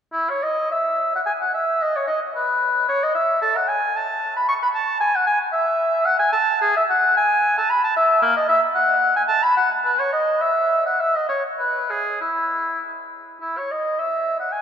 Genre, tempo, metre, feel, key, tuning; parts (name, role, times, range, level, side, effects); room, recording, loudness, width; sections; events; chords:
classical, baroque-style fantasia for unaccompanied oboe; 93-115 BPM; 3/4; rubato; E major; A4 = 438 Hz
warm oboe; solo; 0.1-14.6 s; A#3 to C#6; -18 LUFS; equal
wet church reverb, RT60 4.0 s; recorded in a church or concert hall; -18 LUFS; side -8 dB against mid
0.1-13.4 A section; 13.4-14.6 A section